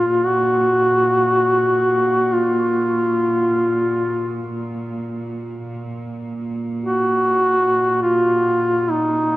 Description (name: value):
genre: caucasian folk, Caucasian lament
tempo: free time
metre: none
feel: none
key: unclear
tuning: A4 = 442 Hz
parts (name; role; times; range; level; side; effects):
- warm duduk; melody; 0.0-9.4 s; Eb4 to Gb4; -16 LUFS; equal; none
- rich studio cello section; drone; 0.0-9.4 s; Bb2; -25 LUFS; right 2 dB; none
room: wet cathedral reverb, RT60 6.3 s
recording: worn, warbling old tape, cassette tape, warbly pitch drift, lossy compression artefacts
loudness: -16 LUFS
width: side -16 dB against mid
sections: 0.0-9.4 A section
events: none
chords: none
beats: free time